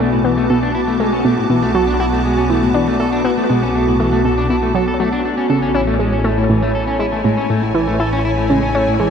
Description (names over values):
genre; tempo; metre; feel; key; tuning
ambient, sequencer-driven space music; 120 BPM; 4/4; straight; unclear; A4 = 440 Hz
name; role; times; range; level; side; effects
evolving wavetable pad; sustained chords; 0.0-9.1 s; B3 to D6; -18 LUFS; equal; ensemble chorus, built-in reverb
clean electric guitar; arpeggios; 0.0-9.1 s; A2 to A4; -20 LUFS; left 2 dB; auto-pan, low-pass filter, ping-pong delay
analog pluck; riff; 0.0-9.1 s; A2 to F#4; -18 LUFS; right 1 dB; chorus, ping-pong delay
fat analog bass; bass; 0.0-9.1 s; A1 to B1; -23 LUFS; equal; none
room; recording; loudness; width
wet lush hall reverb, RT60 2.6 s; dark, warm production; -14 LUFS; side -7 dB against mid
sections
0.0-9.1 A section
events
none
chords
0.0 Bm7; 5.5 Amaj7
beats
0.00 0.50 1.00 | 1.50 2.00 2.50 3.00 | 3.50 4.00 4.50 5.00 | 5.50 6.00 6.50 7.00 | 7.50 8.00 8.50 9.00